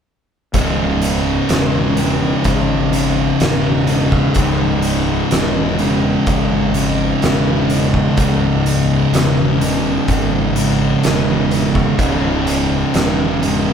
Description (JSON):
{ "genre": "stoner and doom metal", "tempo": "63 BPM", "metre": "4/4", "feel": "straight", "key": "C# minor", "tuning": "A4 = 435 Hz", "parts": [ { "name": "thick fuzz guitar", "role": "riff", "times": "0.5-13.7 s", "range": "C#2 to C#3", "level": "-18 LUFS", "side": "left 6 dB", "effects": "distortion" }, { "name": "thick fuzz guitar", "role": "riff", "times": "0.5-13.7 s", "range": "C#2 to C#3", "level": "-18 LUFS", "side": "right 6 dB", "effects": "distortion" }, { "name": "fuzz fingered electric bass", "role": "bass", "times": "0.5-13.7 s", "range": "C#1 to G#1", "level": "-22 LUFS", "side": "equal", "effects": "overdrive" }, { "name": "oversized low-tuned drum kit", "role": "drums", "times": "0.5-13.6 s", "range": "hi-hat, kick drum, snare drum", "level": "-20 LUFS", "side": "right 1 dB", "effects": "none" } ], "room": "moderate large studio reverb, RT60 1.2 s", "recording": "band playing live in one room", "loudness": "-13 LUFS", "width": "side -7 dB against mid", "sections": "0.6-13.7 A section", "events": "none", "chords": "0.6 C#m" }